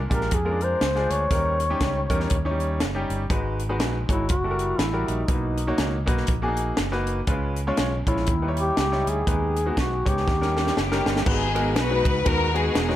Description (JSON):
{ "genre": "uptempo gospel", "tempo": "121 BPM", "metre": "4/4", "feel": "swing 58% on 8ths", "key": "G# minor", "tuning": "A4 = 440 Hz", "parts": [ { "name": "bright baby grand piano", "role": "accompaniment", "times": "0.0-13.0 s", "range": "G#2 to C#5", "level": "-28 LUFS", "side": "equal", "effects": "none" }, { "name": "fingered electric bass", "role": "bass", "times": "0.0-13.0 s", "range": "E1 to E#2", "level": "-27 LUFS", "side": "equal", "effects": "none" }, { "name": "mellow duduk", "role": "melody", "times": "0.1-11.1 s", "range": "D#4 to C#5", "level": "-27 LUFS", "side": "left 1 dB", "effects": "analog delay" }, { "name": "crisp fusion drum kit", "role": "drums", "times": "0.1-13.0 s", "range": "crash cymbal, hi-hat, kick drum, ride cymbal, snare drum", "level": "-26 LUFS", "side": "equal", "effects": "none" }, { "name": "warm studio string section", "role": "melody", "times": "10.8-13.0 s", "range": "A#3 to B4", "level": "-24 LUFS", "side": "left 2 dB", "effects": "analog delay" } ], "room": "light reverb, small room ambience", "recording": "echo-heavy mix", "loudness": "-21 LUFS", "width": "side -13 dB against mid", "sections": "0.0-11.3 A section; 11.3-13.0 B section", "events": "drum fill 10.3-11.3", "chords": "0.0 A#7; 1.3 D#7; 3.3 G#m7; 4.3 F#7b9; 5.3 Bmaj7; 7.3 C#7; 8.3 D#7b9; 9.3 G#m/D#; 10.3 D#7; 11.3 G#m7" }